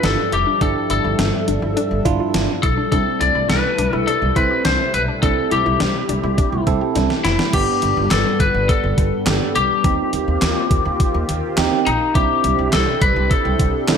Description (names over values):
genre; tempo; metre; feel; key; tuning
synth-pop; 104 BPM; 4/4; straight; G mixolydian; A4 = 440 Hz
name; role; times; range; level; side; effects
lightly driven lead guitar; melody; 0.0-14.0 s; Eb4 to D5; -20 LUFS; left 4 dB; slapback echo
bell-like tine electric piano; accompaniment; 0.0-14.0 s; B3 to C5; -23 LUFS; right 10 dB; phaser
phased analog pad; sustained chords; 0.0-14.0 s; C3 to E5; -25 LUFS; left 1 dB; phaser, chorus
wide unison pluck; arpeggios; 0.0-7.5 s; D4 to G4; -27 LUFS; left 6 dB; auto-pan, slapback echo
upright bass; bass; 0.0-14.0 s; F1 to Eb2; -22 LUFS; right 1 dB; none
gated 80s digital drum machine; drums; 0.0-14.0 s; crash cymbal, handclaps, hi-hat, kick drum, snare drum; -21 LUFS; equal; gated reverb, gated reverb snare, overdrive
room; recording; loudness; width
moderate lush hall reverb, RT60 1.8 s, digital ambience; none; -15 LUFS; side -7 dB against mid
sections
0.0-7.5 A section; 7.5-14.0 B section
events
drum fill 7.0-7.5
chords
0.0 Dmadd9; 2.9 C6; 7.5 G; 9.8 Eb6; 12.2 Cadd9